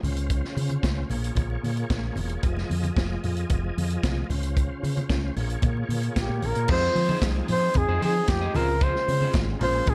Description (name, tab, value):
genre	disco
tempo	113 BPM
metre	4/4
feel	straight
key	F minor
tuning	A4 = 440 Hz
part	overdriven tonewheel organ	sustained chords	0.0-9.9 s	Db3 to Eb5	-37 LUFS	equal	chorus vibrato, fast rotary speaker
part	fingered electric bass	bass	0.0-9.9 s	E1 to F3	-29 LUFS	equal	none
part	vintage drum kit	drums	0.0-9.9 s	crash cymbal, hi-hat, kick drum, snare drum	-30 LUFS	equal	none
part	congas	percussion	0.0-9.9 s	none	-37 LUFS	equal	none
part	breathy flugelhorn	melody	6.2-9.9 s	G4 to C5	-28 LUFS	equal	none
part	bright baby grand piano	accompaniment	6.7-9.9 s	Db3 to F4	-37 LUFS	equal	none
part	electric guitar at the edge of break-up	accompaniment	6.7-9.9 s	Eb4 to Eb5	-38 LUFS	equal	none
part	group handclap	percussion	7.2-9.5 s	none	-42 LUFS	equal	none
room	small room ambience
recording	none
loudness	-25 LUFS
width	mono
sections	0.0-6.7 A section; 6.7-9.9 B section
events	none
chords	0.0 Dbmaj7; 1.1 Bbm7; 2.4 Fm7; 4.3 Dbmaj7; 5.4 Bbm7; 6.7 Fm7; 8.5 Dbmaj7